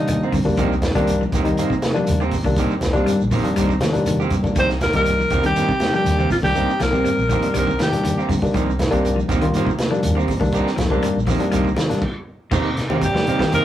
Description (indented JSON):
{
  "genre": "afrobeat",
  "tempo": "120 BPM",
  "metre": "4/4",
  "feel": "straight",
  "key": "C minor",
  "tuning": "A4 = 440 Hz",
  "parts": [
    { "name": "breathy alto saxophone", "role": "melody", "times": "0.0-0.3, 4.6-8.3, 13.0-13.6 s", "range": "Eb4 to C5", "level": "-20 LUFS", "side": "equal", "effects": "none" },
    { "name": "barky tine electric piano", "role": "accompaniment", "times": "0.0-12.0 s", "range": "Eb3 to F4", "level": "-23 LUFS", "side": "left 1 dB", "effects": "none" },
    { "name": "clean electric guitar", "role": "arpeggios", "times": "0.0-13.6 s", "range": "C3 to G3", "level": "-26 LUFS", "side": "left 3 dB", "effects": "none" },
    { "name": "vintage muted fingered electric bass", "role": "bass", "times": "0.0-13.6 s", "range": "Bb1 to C3", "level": "-25 LUFS", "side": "equal", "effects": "none" },
    { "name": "crunchy breakbeat drum kit", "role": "drums", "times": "0.1-13.6 s", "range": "crash cymbal, hi-hat, kick drum, snare drum", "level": "-25 LUFS", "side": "equal", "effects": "none" },
    { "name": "congas", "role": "percussion", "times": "0.1-13.6 s", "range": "none", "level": "-27 LUFS", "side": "right 1 dB", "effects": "none" },
    { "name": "shekere", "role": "percussion", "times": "0.1-13.6 s", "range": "none", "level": "-33 LUFS", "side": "equal", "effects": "none" },
    { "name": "electric guitar at the edge of break-up", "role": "stabs", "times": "0.2-13.6 s", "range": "Eb3 to G4", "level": "-25 LUFS", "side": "right 4 dB", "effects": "spring reverb" },
    { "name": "breathy trombone", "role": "second line", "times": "13.0-13.6 s", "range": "G3 to Bb3", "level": "-29 LUFS", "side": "right 2 dB", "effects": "none" }
  ],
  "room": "moderate studio reverb, RT60 0.6 s",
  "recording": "rough rehearsal-room recording",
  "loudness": "-17 LUFS",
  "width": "side -12 dB against mid",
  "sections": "0.0-12.5 A section; 12.5-13.6 B section",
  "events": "stop 12.0-12.5",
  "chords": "0.0 Cm7"
}